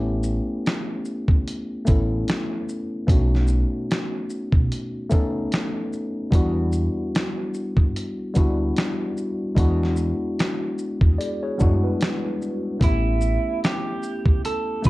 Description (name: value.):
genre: lo-fi hip hop.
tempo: 74 BPM.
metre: 4/4.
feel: swing 59% on 16ths.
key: E dorian.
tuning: A4 = 441 Hz.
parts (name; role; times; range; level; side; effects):
mellow tine electric piano; accompaniment; 0.0-14.9 s; G3 to A4; -26 LUFS; left 1 dB; overdrive, cassette tape.
upright bass; bass; 0.0-14.9 s; A1 to G2; -23 LUFS; equal; none.
dusty soul sampler-style drum kit; drums; 0.2-14.9 s; hi-hat, kick drum, shaker, snare drum; -21 LUFS; equal; none.
mellow tine electric piano; second line; 11.2-12.8 s; F#4 to D5; -31 LUFS; equal; medium stereo tremolo, tape echo.
electric guitar through a small old amp; melody; 12.8-14.9 s; E4 to B4; -27 LUFS; right 5 dB; phaser.
room: light reverb.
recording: cassette tape.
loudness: -20 LUFS.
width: side -19 dB against mid.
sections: 0.0-14.9 A section.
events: break 0.0-6.3.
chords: 0.0 A7; 3.1 B7; 6.3 Em7; 9.6 E7; 12.8 A7.